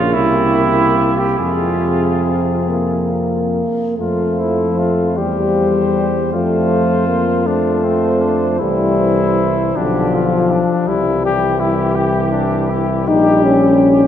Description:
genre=classical, hymn-like piece for brass band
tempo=44-56 BPM (dotted quarters)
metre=6/8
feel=rubato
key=F minor, F major from 4.0 s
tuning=A4 = 440 Hz
part: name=warm flugelhorn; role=second line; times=0.0-14.1 s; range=E4 to C5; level=-21 LUFS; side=right 5 dB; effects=none
part: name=clear euphonium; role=accompaniment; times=0.0-14.1 s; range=C3 to G3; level=-23 LUFS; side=right 2 dB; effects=none
part: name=warm euphonium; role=accompaniment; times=0.0-14.1 s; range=F3 to Eb4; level=-17 LUFS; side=left 2 dB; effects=none
part: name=mellow tuba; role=bass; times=0.0-14.1 s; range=Bb1 to F2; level=-19 LUFS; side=equal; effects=none
part: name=dark cornet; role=melody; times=0.2-13.9 s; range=C4 to Ab4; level=-21 LUFS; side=left 5 dB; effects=none
room=wet cathedral reverb, RT60 4.8 s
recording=none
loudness=-13 LUFS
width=side -10 dB against mid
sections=0.0-4.0 A section; 4.0-14.1 B section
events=none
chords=0.2 C7; 1.4 Fm; 4.0 F; 5.2 C/E; 6.3 F; 8.6 C; 9.8 G7/B; 10.9 C; 13.1 Gdim/Bb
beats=0.16 | 1.39 2.70 | 4.01 5.18 | 6.35 7.48 | 8.62 9.77 | 10.89 11.98 | 13.09

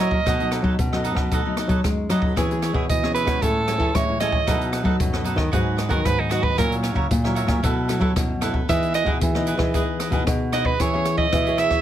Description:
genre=samba and choro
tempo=114 BPM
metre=4/4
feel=straight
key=E major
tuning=A4 = 440 Hz
part: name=bright soprano saxophone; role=melody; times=0.0-11.8 s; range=D#4 to E5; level=-23 LUFS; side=right 5 dB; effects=none
part: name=cavaquinho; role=accompaniment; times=0.0-11.8 s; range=D#4 to G#5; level=-29 LUFS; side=right 3 dB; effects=none
part: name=nylon-string guitar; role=accompaniment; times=0.0-11.8 s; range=F#2 to G#4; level=-28 LUFS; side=left 4 dB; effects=none
part: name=nylon-string guitar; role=bass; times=0.0-11.8 s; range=G#2 to G#3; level=-24 LUFS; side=equal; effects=none
part: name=open jazz drum kit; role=drums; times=0.1-11.8 s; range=hi-hat, kick drum, rim click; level=-24 LUFS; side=equal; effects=none
room=light reverb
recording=none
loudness=-19 LUFS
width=side -11 dB against mid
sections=0.0-10.8 A section; 10.8-11.8 B section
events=soprano saxophone solo 0.0-10.8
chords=0.3 B7; 2.4 E6; 3.4 Amaj7; 4.5 B7; 5.5 G#m7; 6.6 F#7/A#; 7.6 B7sus4; 8.7 Emaj7; 10.8 E6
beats=| 0.26 0.79 1.32 1.84 | 2.37 2.90 3.42 3.95 | 4.48 5.00 5.53 6.05 | 6.58 7.11 7.64 8.16 | 8.69 9.22 9.74 10.27 | 10.80 11.33

